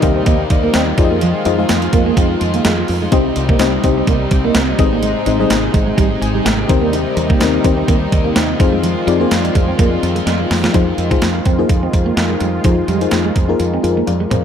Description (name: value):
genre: 1980s-style pop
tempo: 126 BPM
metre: 4/4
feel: swing 55% on 16ths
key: unclear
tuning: A4 = 440 Hz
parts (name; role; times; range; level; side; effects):
- FM electric piano with tremolo; accompaniment; 0.0-14.4 s; Ab2 to Ab5; -19 LUFS; left 10 dB; none
- high-gain distorted guitar; accompaniment; 0.0-11.2 s; C3 to Ab4; -27 LUFS; right 1 dB; distortion, wide subtle chorus
- lush unison pad; sustained chords; 0.0-14.4 s; C3 to F4; -22 LUFS; right 1 dB; chorus
- clean electric guitar; riff; 0.0-14.4 s; F3 to Eb4; -21 LUFS; right 5 dB; analog chorus, slapback echo
- woody fretless electric bass; bass; 0.0-14.4 s; Ab1 to F2; -20 LUFS; right 1 dB; none
- clean 12-bit digital drum machine; drums; 0.0-14.4 s; hi-hat, kick drum, snare drum, tambourine, toms; -16 LUFS; right 1 dB; none
room: light reverb, digital ambience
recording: none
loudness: -12 LUFS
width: side -8 dB against mid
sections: 0.0-10.7 A section; 10.7-14.4 B section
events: FM electric piano fill 6.0-6.9; drum fill 10.3-10.7, 14.1-14.4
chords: 0.0 Eb6; 1.0 Fm7; 3.1 Cm; 4.8 Ab; 6.7 Eb6; 8.6 Fm7